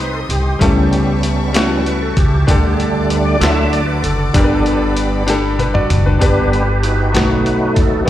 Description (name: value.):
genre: slow gospel.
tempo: 64 BPM (dotted quarters).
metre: 6/8.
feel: straight.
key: G major.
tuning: A4 = 445 Hz.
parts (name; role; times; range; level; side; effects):
clear grand piano; accompaniment; 0.0-8.1 s; G2 to D5; -18 LUFS; left 3 dB; slapback echo.
tonewheel organ; sustained chords; 0.0-8.1 s; F#3 to E5; -18 LUFS; right 2 dB; fast rotary speaker, chorus vibrato.
warm studio string section; sustained chords; 0.0-6.2 s; D5 to Eb6; -28 LUFS; left 2 dB; none.
upright bass; bass; 0.0-8.1 s; F#1 to D#2; -18 LUFS; equal; none.
boom bap sampler-style drum kit; drums; 0.0-8.1 s; hi-hat, kick drum, snare drum, toms; -18 LUFS; equal; none.
room: light reverb, small room ambience.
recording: live gig heard through the venue's PA, recital hall reverb.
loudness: -12 LUFS.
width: side -12 dB against mid.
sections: 0.0-6.2 A section; 6.2-8.1 B section.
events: tonewheel organ solo 0.0-6.2, 6.2-8.1; drum fill 5.3-6.2.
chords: 0.0 Cm; 0.6 A7/C#; 2.5 Dsus4; 3.4 D; 4.3 G; 7.1 B7.